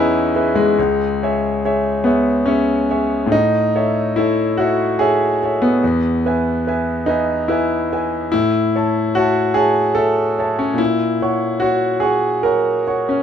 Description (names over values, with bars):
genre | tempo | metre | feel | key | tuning
classical, romantic nocturne for solo piano | 72 BPM | 3/4 | rubato | E major, A major from 8.3 s | A4 = 440 Hz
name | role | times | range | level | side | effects
clear grand piano | solo | 0.0-13.2 s | C#2 to C#6 | -15 LUFS | equal | none
room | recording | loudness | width
light reverb | nothing above 10.5 kHz | -15 LUFS | side -8 dB against mid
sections
0.0-13.2 A section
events
none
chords
0.0 E; 0.8 C#m; 3.3 A; 5.8 E; 8.3 A; 10.8 F#7/A#